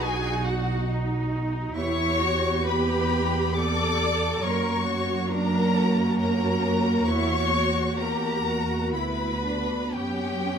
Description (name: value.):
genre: classical, slow romantic movement for string orchestra.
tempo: 58-70 BPM.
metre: 3/4.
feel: rubato.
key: unclear.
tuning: A4 = 440 Hz.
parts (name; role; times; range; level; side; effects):
rich chamber violin section; melody; 0.0-10.6 s; F#5 to D6; -30 LUFS; left 4 dB; none.
rich chamber violin section; second line; 0.0-10.6 s; F#4 to D5; -29 LUFS; left 3 dB; none.
rich chamber viola section; accompaniment; 0.0-10.6 s; A#3 to G4; -29 LUFS; right 3 dB; none.
rich chamber double bass section; bass; 0.0-10.6 s; B1 to F#2; -28 LUFS; right 2 dB; none.
rich symphonic cello section; bass; 0.0-10.6 s; C#4 to A#4; -31 LUFS; right 2 dB; none.
room: moderate recital hall reverb, RT60 1.5 s.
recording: close, detailed microphones.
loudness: -22 LUFS.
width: side -7 dB against mid.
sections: 0.0-10.6 A section.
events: none.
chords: 0.0 B; 1.8 Em; 4.4 F#; 7.1 F#7/E; 8.9 Bm/D; 9.9 F#sus4.